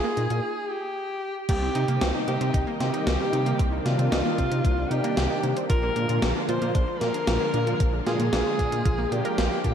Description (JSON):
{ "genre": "synthwave", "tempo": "114 BPM", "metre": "4/4", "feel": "straight", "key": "C minor", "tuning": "A4 = 440 Hz", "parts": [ { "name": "breathy alto saxophone", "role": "melody", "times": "0.0-9.7 s", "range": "F4 to C5", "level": "-28 LUFS", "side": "equal", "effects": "ping-pong delay" }, { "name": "analog pluck", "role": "arpeggios", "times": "0.0-9.7 s", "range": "Bb3 to Bb4", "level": "-32 LUFS", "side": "right 2 dB", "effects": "chorus, analog delay" }, { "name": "wide detuned saw bass", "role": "bass", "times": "0.2-9.7 s", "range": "Bb1 to C3", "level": "-27 LUFS", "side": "equal", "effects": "chorus, tube saturation" }, { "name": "gated 80s digital drum machine", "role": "drums", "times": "0.2-9.7 s", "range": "crash cymbal, hi-hat, snare drum", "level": "-31 LUFS", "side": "equal", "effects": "gated reverb, gated reverb snare, overdrive" }, { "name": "analog string pad", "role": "sustained chords", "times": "1.5-9.7 s", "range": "C3 to F4", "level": "-30 LUFS", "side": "equal", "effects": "ensemble chorus, sidechain pumping" }, { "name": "electronic kick drum", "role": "drums", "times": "1.5-9.7 s", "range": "none", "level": "-24 LUFS", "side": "equal", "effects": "overdrive" } ], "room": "moderate lush hall reverb, RT60 1.7 s", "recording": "dreamy mix soaked in reverb", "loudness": "-22 LUFS", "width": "side -8 dB against mid", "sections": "0.0-1.5 A section; 1.5-9.7 B section", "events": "break 0.4-1.5", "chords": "0.0 Bb7sus4; 1.5 Cm7; 5.7 Bb7", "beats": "0.43 0.96 | 1.49 2.01 2.54 3.06 | 3.59 4.12 4.64 5.17 | 5.70 6.22 6.75 7.28 | 7.80 8.33 8.86 9.38" }